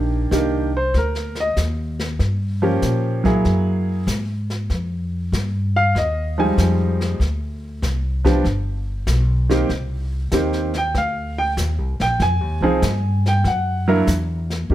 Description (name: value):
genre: jazz piano trio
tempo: 96 BPM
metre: 4/4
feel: swing 68% on 8ths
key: C minor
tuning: A4 = 441 Hz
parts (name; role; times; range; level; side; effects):
- clear concert grand piano; melody; 0.0-14.7 s; Eb3 to Ab5; -20 LUFS; right 1 dB; none
- upright bass; bass; 0.0-14.7 s; G1 to Bb2; -21 LUFS; equal; none
- jazz brush drum kit; drums; 0.3-14.7 s; brushed snare drum, hi-hat, kick drum, snare drum; -26 LUFS; left 1 dB; none
room: light reverb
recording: none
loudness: -18 LUFS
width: side -13 dB against mid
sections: 0.0-14.7 A section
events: grand piano solo 0.0-14.7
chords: 0.0 Ebmaj7; 2.2 Gm7b5; 3.5 F#9; 4.7 Fm9; 7.2 Csus2; 8.5 G; 9.7 Cm; 12.2 Fm7; 13.5 Bb(#5, no3)